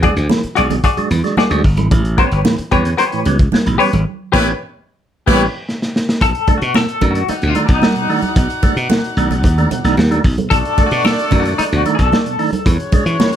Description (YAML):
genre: funk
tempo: 112 BPM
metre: 4/4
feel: straight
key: unclear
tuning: A4 = 443 Hz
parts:
  - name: clean electric guitar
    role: accompaniment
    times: 0.0-12.7 s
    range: D#4 to D5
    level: -18 LUFS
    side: left 5 dB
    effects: tremolo
  - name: percussive tonewheel organ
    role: stabs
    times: 0.0-13.3 s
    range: A2 to D4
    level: -20 LUFS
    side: right 4 dB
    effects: chorus vibrato, fast rotary speaker
  - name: glassy slap bass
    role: bass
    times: 0.0-13.2 s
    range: G1 to E3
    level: -17 LUFS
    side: equal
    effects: none
  - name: crunchy breakbeat drum kit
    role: drums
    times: 0.0-13.4 s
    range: crash cymbal, hi-hat, kick drum, snare drum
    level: -16 LUFS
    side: equal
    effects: none
  - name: congas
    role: percussion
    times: 0.0-13.3 s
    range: none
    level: -24 LUFS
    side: right 4 dB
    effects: none
  - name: clear horn section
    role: second line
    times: 4.3-13.4 s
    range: G3 to F#5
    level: -22 LUFS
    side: left 1 dB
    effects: none
room: moderate studio reverb, RT60 0.6 s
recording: none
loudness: -12 LUFS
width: side -10 dB against mid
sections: 0.0-6.2 A section; 6.2-13.4 B section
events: band accent 4.1-6.2; drum fill 5.7-6.2; clean electric guitar solo 6.2-13.4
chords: 0.0 E9; 1.9 A9; 6.2 B7#9; 12.7 E9